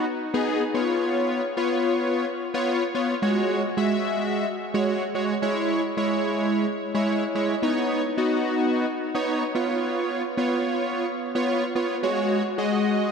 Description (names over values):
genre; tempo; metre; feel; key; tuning
pop; 109 BPM; 4/4; straight; unclear; A4 = 440 Hz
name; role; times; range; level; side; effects
big bright polysynth; solo; 0.0-13.1 s; G#3 to E5; -22 LUFS; equal; chorus, diffuse ambient delay
room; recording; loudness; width
wet lush hall reverb, RT60 2.6 s; dreamy mix soaked in reverb; -22 LUFS; side -6 dB against mid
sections
0.0-13.1 A section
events
none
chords
0.0 B; 0.7 C#7; 3.2 F#sus2; 5.4 E6; 7.6 Badd9; 9.6 C#7; 12.0 F#sus2